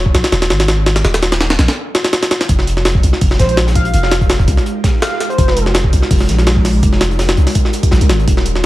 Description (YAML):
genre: drum and bass, jungle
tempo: 166 BPM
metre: 4/4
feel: swing 53% on 16ths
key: F minor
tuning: A4 = 440 Hz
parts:
  - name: long sustained 808-style bass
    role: bass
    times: 0.0-8.7 s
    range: Eb1 to C2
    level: -14 LUFS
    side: equal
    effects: none
  - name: jungle sampler-style drum kit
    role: drums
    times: 0.1-8.6 s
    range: hi-hat, kick drum, snare drum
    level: -13 LUFS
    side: equal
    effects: none
  - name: crunchy breakbeat drum kit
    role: drums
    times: 2.5-8.7 s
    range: hi-hat, snare drum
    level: -28 LUFS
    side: equal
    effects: high-pass filter on hats, high-pass filter on snare, high-pass filter on room
  - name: airy dreamy lead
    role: melody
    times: 3.4-5.7 s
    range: C5 to F5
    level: -21 LUFS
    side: equal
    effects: chorus, cassette tape, dub echo
room: little or no reverb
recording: vinyl crackle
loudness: -11 LUFS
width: side -17 dB against mid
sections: 0.0-8.7 A section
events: none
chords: 0.0 Ebsus4; 2.5 Fm11